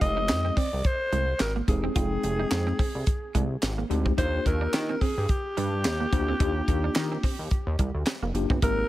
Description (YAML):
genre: early-eighties boogie funk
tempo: 108 BPM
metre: 4/4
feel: swing 56% on 16ths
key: unclear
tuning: A4 = 444 Hz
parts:
  - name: breathy alto saxophone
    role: melody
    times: 0.0-8.9 s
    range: G4 to Eb5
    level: -30 LUFS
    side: equal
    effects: none
  - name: mellow tine electric piano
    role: accompaniment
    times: 0.0-8.8 s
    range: Ab3 to G5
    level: -31 LUFS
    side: left 3 dB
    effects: medium stereo tremolo
  - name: semi-hollow electric guitar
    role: riff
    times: 0.0-8.7 s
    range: G3 to F4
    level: -35 LUFS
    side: right 7 dB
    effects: ensemble chorus
  - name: chorused synth bass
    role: bass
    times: 0.0-8.8 s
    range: E1 to Eb3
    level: -28 LUFS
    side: equal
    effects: none
  - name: tight funk drum kit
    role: drums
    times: 0.0-8.8 s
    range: handclaps, hi-hat, kick drum, snare drum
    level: -27 LUFS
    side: equal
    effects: none
room: studio reverb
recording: none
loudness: -24 LUFS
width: side -15 dB against mid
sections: 0.0-8.6 A section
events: none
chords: 0.0 Fm9; 4.2 Ebmaj7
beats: 0.29 0.85 1.40 | 1.96 2.51 3.07 3.62 | 4.18 4.74 5.29 5.85 | 6.40 6.96 7.51 8.07 | 8.62